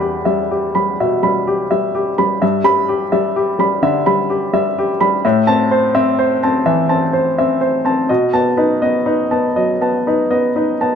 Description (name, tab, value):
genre	neoclassical minimalist piano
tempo	80-87 BPM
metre	4/4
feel	rubato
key	E minor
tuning	A4 = 439 Hz
part	clear upright piano	solo	0.0-11.0 s	E2 to B5	-13 LUFS	equal	none
room	light reverb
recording	close, detailed microphones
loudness	-13 LUFS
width	side -7 dB against mid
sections	0.0-11.0 A section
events	none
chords	0.0 Em; 2.4 G6; 5.2 Am; 8.1 B7